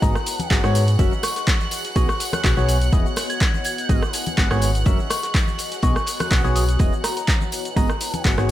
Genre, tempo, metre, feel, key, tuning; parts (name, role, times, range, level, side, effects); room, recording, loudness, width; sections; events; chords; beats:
piano house; 124 BPM; 4/4; swing 53% on 16ths; A4 = 440 Hz
soft synth bell; melody; 0.0-8.2 s; A#5 to G#6; -30 LUFS; left 1 dB; chorus, tape echo
clear studio violin section; sustained chords; 0.0-8.5 s; F#5 to F#6; -32 LUFS; right 3 dB; vintage 12-bit sampler grit, sidechain pumping
percussive organ stab; riff; 0.0-8.5 s; G#2 to F#5; -26 LUFS; left 1 dB; chorus, phaser, sidechain pumping, tape echo
solid FM bass; bass; 0.0-8.5 s; E1 to G#2; -21 LUFS; equal; sidechain pumping
electronic kick drum; drums; 0.0-8.4 s; -20 LUFS; equal; overdrive
punchy analog drum machine; drums; 0.0-8.5 s; handclaps, hi-hat, rim click, shaker; -26 LUFS; equal; overdrive
warm soul drum kit; drums; 0.0-8.5 s; hi-hat, snare drum; -39 LUFS; left 3 dB
tambourine and congas; percussion; 0.0-8.5 s; -33 LUFS; left 3 dB
ethereal airy pad; texture; 0.0-8.5 s; F#4 to C#5; -33 LUFS; left 4 dB; ensemble chorus, built-in reverb, sidechain pumping
light reverb, small room ambience; -18 LUFS; side -13 dB against mid
0.0-8.5 A section
0.0 G#m7; 1.0 F#7; 2.0 B6; 2.9 Emaj7; 3.9 G#m7; 4.9 F#7; 5.8 B6; 6.8 Emaj7; 7.8 G#m7
0.02 0.51 | 0.99 1.48 1.96 2.44 | 2.93 3.41 3.89 4.38 | 4.86 5.35 5.83 6.31 | 6.80 7.28 7.76 8.25